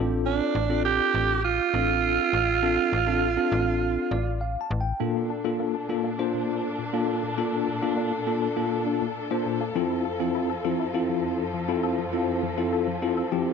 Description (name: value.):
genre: pop.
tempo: 101 BPM.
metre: 4/4.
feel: straight.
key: unclear.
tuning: A4 = 440 Hz.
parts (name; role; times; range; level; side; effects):
bell-like tine electric piano; accompaniment; 0.0-13.5 s; Bb3 to A5; -27 LUFS; left 2 dB; medium stereo tremolo.
slap-like FM bass; bass; 0.0-4.9 s; A1; -28 LUFS; left 2 dB; none.
breathy alto saxophone; melody; 0.3-4.4 s; D4 to G4; -24 LUFS; right 9 dB; slapback echo.
dark chamber string section; sustained chords; 5.0-13.5 s; F2 to A4; -30 LUFS; left 2 dB; none.
wide unison pluck; arpeggios; 5.0-13.4 s; Bb2 to A4; -34 LUFS; left 13 dB; slapback echo.
room: wet spring reverb, RT60 1.9 s, small room reverb.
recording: 1960s-style stereo with parts hard left and right, nothing above 7.9 kHz.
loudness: -23 LUFS.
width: side -6 dB against mid.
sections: 0.0-5.0 A section; 5.0-13.5 B section.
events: tine electric piano fill 3.8-5.0; build-up 5.0-13.5.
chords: 0.0 Dm7/A; 5.0 Bbmaj7; 9.8 Fmaj7.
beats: | 0.25 0.84 1.44 2.03 | 2.63 3.22 3.82 4.41 | 5.00 5.60 6.19 6.79 | 7.38 7.97 8.57 9.16 | 9.76 10.35 10.94 11.54 | 12.13 12.73 13.32.